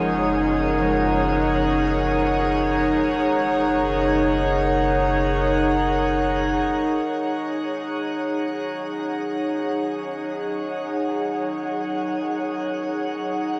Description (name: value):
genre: ambient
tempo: free time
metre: none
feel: none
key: unclear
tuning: A4 = 438 Hz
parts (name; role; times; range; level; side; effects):
- warbly tape-like pad; sustained chords; 0.0-13.6 s; D#4 to F#5; -24 LUFS; equal; chorus, built-in reverb
- round analog bass; bass; 0.0-7.0 s; F#1; -30 LUFS; equal; none
- organ-like drone; drone; 0.0-13.6 s; F#3 to C#4; -37 LUFS; equal; ensemble chorus, built-in reverb
- glass harmonica; texture; 0.0-7.1 s; A#4 to F#5; -29 LUFS; equal; none
room: wet shimmer reverb, RT60 7.9 s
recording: none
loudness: -22 LUFS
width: mono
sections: 0.0-7.1 A section; 7.1-13.6 B section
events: fade-out on synth drone 0.0-7.1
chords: 0.0 C#sus2/F#; 3.3 G#sus2/F#